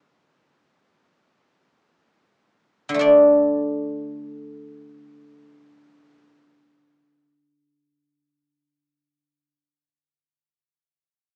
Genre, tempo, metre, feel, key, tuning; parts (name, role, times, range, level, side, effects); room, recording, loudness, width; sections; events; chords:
chinese traditional, Chinese solo plucked strings; free time; A4 = 440 Hz
guzheng; solo; 0.0-9.5 s; D3 to D5; -19 LUFS; equal
light reverb; small speaker sound; -18 LUFS; mono
0.0-3.0 A section; 3.0-8.5 B section
slowing down 0.0-3.0